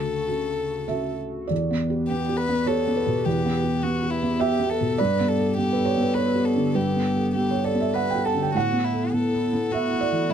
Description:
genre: neoclassical piano and strings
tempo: 102 BPM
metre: 3/4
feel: rubato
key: E dorian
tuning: A4 = 438 Hz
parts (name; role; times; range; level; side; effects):
- rich violin; melody; 0.0-10.3 s; E4 to B4; -28 LUFS; left 5 dB; none
- felt-muted upright piano; accompaniment; 0.0-10.3 s; D2 to A5; -23 LUFS; right 2 dB; none
- hollow soft pad; sustained chords; 0.0-10.3 s; C#3 to B4; -32 LUFS; right 1 dB; chorus
room: light reverb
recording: close, detailed microphones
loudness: -21 LUFS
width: side -8 dB against mid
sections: 0.0-1.5 A section; 1.5-10.3 A section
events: none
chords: 0.0 Dmaj7; 1.5 Em7; 5.0 Gadd9; 8.5 Asus2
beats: 0.29 0.90 | 1.50 2.10 2.68 | 3.26 3.83 4.41 | 4.99 5.57 6.16 | 6.75 7.35 7.95 | 8.55 9.14 9.73 | 10.31

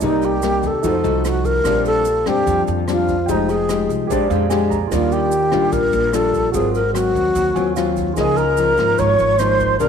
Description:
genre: bossa nova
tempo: 147 BPM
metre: 4/4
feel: straight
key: Bb major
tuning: A4 = 440 Hz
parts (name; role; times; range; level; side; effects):
- breathy alto flute; melody; 0.0-9.9 s; Eb4 to Db5; -18 LUFS; equal; none
- nylon-string guitar; accompaniment; 0.0-9.9 s; Ab2 to G4; -21 LUFS; left 9 dB; none
- warm grand piano; accompaniment; 0.0-9.9 s; Bb3 to Bb5; -25 LUFS; right 13 dB; none
- upright bass; bass; 0.0-9.9 s; F1 to F2; -24 LUFS; right 2 dB; none
- jazz brush drum kit; drums; 0.0-9.9 s; hi-hat, kick drum, rim click; -31 LUFS; right 2 dB; none
- egg shaker; percussion; 0.0-9.9 s; none; -37 LUFS; right 18 dB; none
- mellow hollow flute section; second line; 8.1-9.9 s; Ab5 to Db6; -24 LUFS; right 4 dB; none
room: moderate echo chamber reverb, RT60 1.3 s, small room ambience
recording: 1960s-style stereo with parts hard left and right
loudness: -15 LUFS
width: side -7 dB against mid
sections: 0.0-1.7 A section; 1.7-9.9 A section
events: grand piano fill 4.1-4.9, 7.4-8.2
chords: 0.0 Cm7; 0.8 F7b9; 1.7 Bb69; 3.3 Fm9; 4.1 Bb13; 4.9 Ebmaj9; 6.5 Ab13; 8.2 Db69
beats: | 0.02 0.43 0.84 1.25 | 1.65 2.06 2.47 2.88 | 3.28 3.69 4.10 4.51 | 4.91 5.32 5.73 6.14 | 6.54 6.95 7.36 7.77 | 8.17 8.58 8.99 9.40 | 9.80

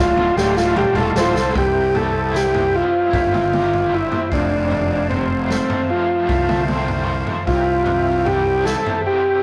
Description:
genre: psychedelic rock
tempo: 76 BPM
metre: 4/4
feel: straight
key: unclear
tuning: A4 = 440 Hz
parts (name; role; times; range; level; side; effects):
- overdriven combo organ; melody; 0.0-9.4 s; C4 to C5; -20 LUFS; equal; none
- percussive tonewheel organ; sustained chords; 0.0-9.4 s; C5 to A5; -32 LUFS; equal; slow rotary speaker, chorus vibrato
- raw garage guitar; riff; 0.0-9.4 s; D2 to G4; -28 LUFS; equal; overdrive, tremolo
- fuzz fingered electric bass; bass; 0.0-8.7 s; D1 to C2; -26 LUFS; equal; overdrive
- vintage drum kit; drums; 0.2-9.0 s; kick drum, snare drum, toms; -27 LUFS; equal; none
room: moderate stone room reverb, RT60 1.1 s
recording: rough rehearsal-room recording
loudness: -18 LUFS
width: mono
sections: 0.0-1.6 A section; 1.6-9.4 B section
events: drum fill 0.0-1.6; transistor combo organ solo 0.0-1.6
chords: 0.0 Dm; 1.6 C; 4.3 F; 7.5 C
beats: 0.76 | 1.55 2.34 3.13 3.92 | 4.70 5.49 6.28 7.07 | 7.86 8.65

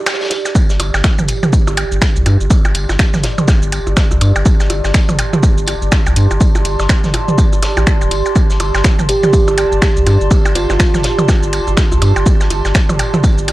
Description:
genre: minimal techno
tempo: 123 BPM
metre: 4/4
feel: swing 59% on 16ths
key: unclear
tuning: A4 = 442 Hz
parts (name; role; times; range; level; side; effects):
- warbly tape-like pad; texture; 0.0-13.5 s; G4 to C6; -21 LUFS; right 2 dB; chorus, built-in reverb, sidechain pumping
- booming analog drum machine; drums; 0.1-13.5 s; finger snaps, hi-hat, shaker; -21 LUFS; equal; none
- snare drum and tambourine; drums; 0.1-13.5 s; none; -27 LUFS; equal; high-pass filter on snare, high-pass filter on perc, high-pass filter on room
- electronic percussion blips and toms; percussion; 0.1-13.5 s; none; -20 LUFS; right 1 dB; overdrive, tape echo
- electronic kick drum; drums; 0.6-13.4 s; none; -13 LUFS; equal; overdrive
- round analog bass; bass; 0.8-13.5 s; D1 to G2; -15 LUFS; equal; transformer saturation, sidechain pumping
- kalimba; melody; 9.1-10.8 s; F4 to G4; -19 LUFS; right 1 dB; tape echo
room: little or no reverb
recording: dry, gritty hardware recording, cassette tape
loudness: -11 LUFS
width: side -17 dB against mid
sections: 0.6-13.5 A section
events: break 0.0-0.6; band accent 0.1; drop 0.6-13.5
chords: 0.0 Gsus4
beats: 0.07 | 0.55 1.04 1.53 2.02 | 2.50 2.99 3.48 3.97 | 4.46 4.94 5.43 5.92 | 6.41 6.89 7.38 7.87 | 8.36 8.85 9.33 9.82 | 10.31 10.80 11.28 11.77 | 12.26 12.75 13.24

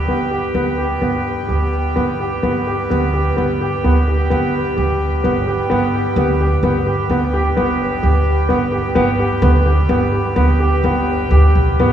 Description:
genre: contemporary instrumental, chamber music in an uneven meter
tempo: 128 BPM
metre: 7/4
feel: straight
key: G major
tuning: A4 = 440 Hz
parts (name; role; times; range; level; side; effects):
- pedal harmonium; sustained chords; 0.0-11.9 s; G3 to G4; -23 LUFS; right 1 dB; none
- warm baby grand piano; arpeggios; 0.1-11.9 s; B3 to G4; -18 LUFS; equal; none
- upright bass; bass; 0.1-11.9 s; G1 to D2; -17 LUFS; right 1 dB; none
room: wet cathedral reverb, RT60 4.8 s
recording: recorded in a church or concert hall, small room ambience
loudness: -14 LUFS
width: side -10 dB against mid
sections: 0.0-11.9 A section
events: none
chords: 0.0 G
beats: 0.08 0.56 1.03 1.50 1.97 | 2.44 2.91 3.38 3.85 4.31 4.78 5.24 | 5.71 6.17 6.64 7.10 7.57 8.03 8.50 | 8.96 9.43 9.90 10.37 10.84 11.31 11.79

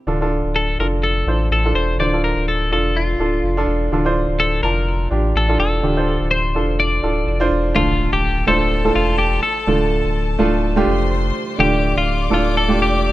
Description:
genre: piano-driven pop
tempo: 125 BPM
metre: 4/4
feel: swing 56% on 16ths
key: D minor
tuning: A4 = 439 Hz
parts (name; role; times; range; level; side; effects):
- warm grand piano; accompaniment; 0.1-13.1 s; D3 to A5; -19 LUFS; right 2 dB; none
- warm sub bass; bass; 0.1-13.1 s; D1 to A1; -21 LUFS; equal; none
- twelve-string electric guitar; melody; 0.6-13.1 s; F4 to D5; -20 LUFS; left 2 dB; none
- rich studio violin section; second line; 7.7-13.1 s; A4 to D6; -26 LUFS; left 2 dB; none
- impact; sound effects; 7.8-9.7 s; none; -30 LUFS; equal; none
room: light reverb, small room ambience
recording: rough home demo mix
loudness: -15 LUFS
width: side -15 dB against mid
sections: 0.1-7.8 A section; 7.8-13.1 B section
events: impact 7.8-9.7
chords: 0.1 Dm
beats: | 0.07 0.55 1.03 1.51 | 1.99 2.47 2.95 3.43 | 3.91 4.39 4.87 5.35 | 5.83 6.31 6.79 7.27 | 7.75 8.23 8.71 9.19 | 9.67 10.15 10.63 11.11 | 11.59 12.07 12.55 13.03

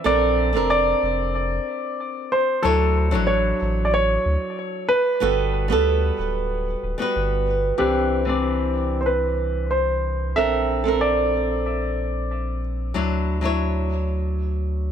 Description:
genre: sunset chillout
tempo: 93 BPM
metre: 4/4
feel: straight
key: C lydian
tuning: A4 = 441 Hz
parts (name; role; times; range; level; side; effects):
- warm grand piano; melody; 0.0-12.6 s; G4 to E5; -23 LUFS; equal; ping-pong delay
- flamenco guitar; accompaniment; 0.0-14.9 s; E3 to D5; -24 LUFS; moving between left 6 dB and right 6 dB; auto-pan, low-pass filter, digital delay
- warm sub bass; bass; 0.1-14.9 s; D1 to D2; -24 LUFS; equal; tube saturation
room: light reverb, small room ambience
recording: none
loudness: -19 LUFS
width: side -8 dB against mid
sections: 0.0-7.8 A section; 7.8-14.9 B section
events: filter sweep on nylon-string guitar 7.8-14.9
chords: 0.1 Bbmaj9; 2.6 Dmaj9; 4.9 Gmaj9; 7.8 Cmaj9; 10.4 Bbmaj9; 13.0 Dmaj9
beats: | 0.06 0.71 1.35 2.00 | 2.64 3.29 3.93 4.58 | 5.22 5.87 6.51 7.16 | 7.80 8.45 9.09 9.74 | 10.38 11.03 11.67 12.32 | 12.96 13.61 14.25 14.90

